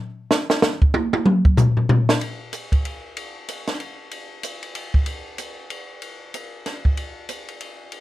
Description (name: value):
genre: jazz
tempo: 189 BPM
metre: 3/4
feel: swing 61% on 8ths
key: none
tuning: none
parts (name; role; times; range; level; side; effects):
- compact cocktail drum kit; drums; 0.3-8.0 s; hi-hat, kick drum, ride cymbal, snare drum, toms; -20 LUFS; equal; none
room: moderate small room reverb, RT60 0.5 s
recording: none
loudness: -18 LUFS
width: side -15 dB against mid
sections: 0.0-2.2 A section; 2.2-8.0 B section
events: drum solo 0.0-2.2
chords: none